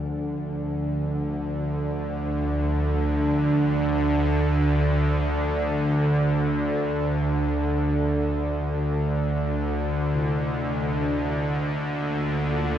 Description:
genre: dark ambient drone.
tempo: free time.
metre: none.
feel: none.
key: D minor.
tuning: A4 = 440 Hz.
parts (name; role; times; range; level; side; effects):
dark analog pad; sustained chords; 0.0-12.8 s; D3 to D5; -34 LUFS; equal; chorus, shimmer reverb.
bronze singing bowl; arpeggios; 0.0-1.9, 10.1-12.8 s; C3 to D4; -36 LUFS; left 2 dB; diffuse ambient delay.
bowed-like drone; drone; 0.0-12.8 s; D2 to D3; -23 LUFS; right 1 dB; built-in reverb.
room: wet cathedral reverb, RT60 5.4 s.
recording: cassette tape.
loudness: -22 LUFS.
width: side -10 dB against mid.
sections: 0.0-12.8 A section.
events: fade-in on analog synth pad 0.0-12.8.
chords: 0.0 Dm; 11.3 Bb/D.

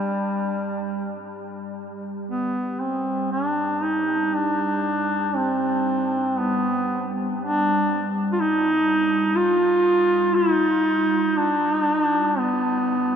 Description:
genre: caucasian folk, Caucasian lament.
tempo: 59 BPM.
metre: 3/4.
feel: rubato.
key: unclear.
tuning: A4 = 444 Hz.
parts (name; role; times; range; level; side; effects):
warm duduk; melody; 0.0-13.2 s; G3 to F4; -20 LUFS; equal; none.
deep dark ambient pad; drone; 0.0-13.2 s; G3; -29 LUFS; right 2 dB; chorus, built-in reverb.
room: wet huge ambient reverb, RT60 9.2 s.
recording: in a vast, echoing space.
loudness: -20 LUFS.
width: side -8 dB against mid.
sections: 0.0-2.3 A section; 2.3-13.2 B section.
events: none.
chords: none.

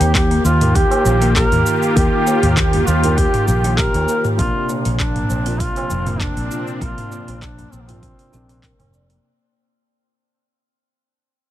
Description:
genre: organic downtempo.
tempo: 99 BPM.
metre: 4/4.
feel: straight.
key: unclear.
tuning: A4 = 441 Hz.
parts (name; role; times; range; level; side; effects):
warm duduk; melody; 0.0-8.9 s; Bb3 to Bb4; -21 LUFS; equal; tape echo.
felt-muted upright piano; accompaniment; 0.0-9.3 s; C3 to G4; -26 LUFS; equal; sidechain pumping, tape echo.
warm analog pad; sustained chords; 0.0-9.2 s; Bb2 to G4; -24 LUFS; equal; chorus, sidechain pumping.
marimba with medium mallets; arpeggios; 0.0-9.2 s; Bb3 to D5; -25 LUFS; left 2 dB; tape echo.
fretless electric bass; bass; 0.0-9.2 s; F1 to Eb2; -18 LUFS; equal; none.
afro-pop drum kit; drums; 0.0-9.2 s; handclaps, hi-hat, shaker, toms; -23 LUFS; right 1 dB; overdrive.
tabla; percussion; 0.0-9.2 s; none; -29 LUFS; right 4 dB; none.
electronic kick drum; drums; 0.1-8.8 s; none; -20 LUFS; equal; overdrive.
room: small room ambience.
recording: dense, heavily limited modern master.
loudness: -14 LUFS.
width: side -13 dB against mid.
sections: 0.0-9.2 A section.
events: fade-out 2.8-9.2.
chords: 0.0 Eb; 4.4 Bbadd9.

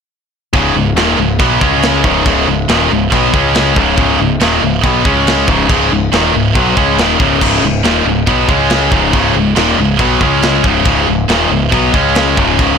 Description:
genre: heavy metal.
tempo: 140 BPM.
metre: 4/4.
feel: straight.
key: unclear.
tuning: A4 = 439 Hz.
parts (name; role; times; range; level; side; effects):
distorted electric guitar; riff; 0.5-12.8 s; C#2 to C#4; -15 LUFS; left 14 dB; overdrive.
heavy high-gain guitar; riff; 0.5-12.8 s; C#2 to C#4; -14 LUFS; right 15 dB; distortion.
growling picked electric bass; bass; 0.5-12.8 s; C#1 to C#2; -17 LUFS; equal; overdrive.
tight metal drum kit; drums; 0.5-12.7 s; china cymbal, crash cymbal, kick drum, snare drum; -16 LUFS; equal; soft clipping on kick.
room: little or no reverb.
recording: blown-out, overdriven recording, overdrive.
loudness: -9 LUFS.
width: side -6 dB against mid.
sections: 0.5-12.8 A section.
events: none.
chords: 0.5 C#5.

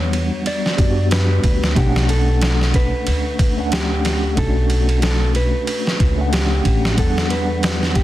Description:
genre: trip hop.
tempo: 92 BPM.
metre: 4/4.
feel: swing 58% on 16ths.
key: unclear.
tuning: A4 = 439 Hz.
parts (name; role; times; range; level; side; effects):
mellow electric guitar; melody; 0.0-8.0 s; G4 to D5; -25 LUFS; equal; tape echo.
mellow tine electric piano; accompaniment; 0.0-8.0 s; G3 to F#5; -23 LUFS; equal; medium stereo tremolo, vintage 12-bit sampler grit.
upright bass; bass; 0.0-8.0 s; A1 to F#2; -19 LUFS; equal; none.
trip hop sampler-style drum kit; drums; 0.1-8.0 s; kick drum, ride cymbal, snare drum; -20 LUFS; equal; none.
room: little or no reverb.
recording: dense, heavily limited modern master, vinyl crackle.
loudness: -15 LUFS.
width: side -14 dB against mid.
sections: 0.0-8.0 A section.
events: none.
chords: 0.0 Em7; 1.8 Bm7; 7.0 Em7.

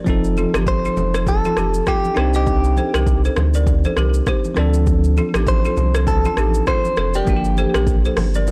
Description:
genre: afrobeats.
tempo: 100 BPM.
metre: 4/4.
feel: swing 58% on 16ths.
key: unclear.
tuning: A4 = 439 Hz.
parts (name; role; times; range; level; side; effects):
bell-like tine electric piano; accompaniment; 0.0-8.5 s; F3 to A4; -26 LUFS; equal; none.
sub bass with octave; bass; 0.1-8.5 s; F1 to D2; -21 LUFS; equal; none.
afro-pop drum kit; drums; 0.1-8.5 s; hi-hat, kick drum, rim click, shaker; -24 LUFS; equal; overdrive.
balafon; riff; 0.4-8.4 s; Eb4 to Eb5; -29 LUFS; equal; slapback echo.
congas; percussion; 0.4-8.5 s; none; -32 LUFS; equal; none.
direct-recorded clean electric guitar; melody; 0.7-8.0 s; G4 to C5; -24 LUFS; equal; warbly pitch drift.
room: little or no reverb.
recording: blown-out, overdriven recording, overdrive.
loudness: -18 LUFS.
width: mono.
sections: 0.1-8.5 A section.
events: none.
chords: 0.1 F7; 2.2 Cmadd9; 4.6 Dm7; 7.3 Gm7.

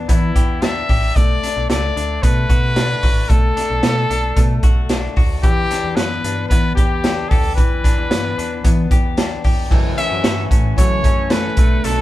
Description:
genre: jangly indie pop.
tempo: 112 BPM.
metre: 4/4.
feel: straight.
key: B minor.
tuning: A4 = 440 Hz.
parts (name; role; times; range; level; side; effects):
semi-hollow electric guitar; arpeggios; 0.0-12.0 s; E3 to G4; -24 LUFS; left 5 dB; spring reverb.
slap-like FM bass; bass; 0.0-12.0 s; A1 to F#3; -23 LUFS; equal; none.
brilliant trumpet; melody; 0.1-12.0 s; E4 to E5; -22 LUFS; left 1 dB; none.
raw garage drum kit; drums; 0.1-12.0 s; crash cymbal, hi-hat, kick drum, snare drum; -16 LUFS; equal; none.
electric guitar at the edge of break-up; accompaniment; 9.7-12.0 s; F#2 to A4; -26 LUFS; right 5 dB; none.
room: light reverb.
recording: band playing live in one room.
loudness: -14 LUFS.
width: side -15 dB against mid.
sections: 0.0-9.7 A section; 9.7-12.0 B section.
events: none.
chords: 0.0 Em7; 1.2 Bm7; 5.4 Em7; 9.7 F#m7.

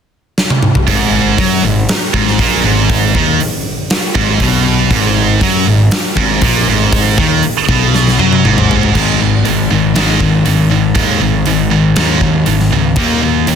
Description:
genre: hard rock.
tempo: 119 BPM.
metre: 4/4.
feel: straight.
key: G# minor.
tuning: A4 = 444 Hz.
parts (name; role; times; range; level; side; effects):
huge arena drum kit; drums; 0.4-13.6 s; crash cymbal, hi-hat, kick drum, snare drum, toms; -15 LUFS; equal; soft clipping on kick.
scooped high-gain guitar; riff; 0.9-13.6 s; G#2 to D#4; -14 LUFS; right 10 dB; distortion.
sludgy distorted guitar; riff; 0.9-13.6 s; G#2 to D#4; -15 LUFS; left 8 dB; overdrive.
fuzz picked electric bass; bass; 0.9-13.6 s; G#1 to F#2; -16 LUFS; equal; overdrive.
room: light reverb, studio ambience.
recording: dense, heavily limited modern master.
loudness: -9 LUFS.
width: side -7 dB against mid.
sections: 0.9-8.9 A section; 8.9-13.6 B section.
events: drum fill 0.4-0.9, 7.9-8.9.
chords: 0.0 N.C.; 0.9 G#m; 8.9 G#5; 13.0 D#5.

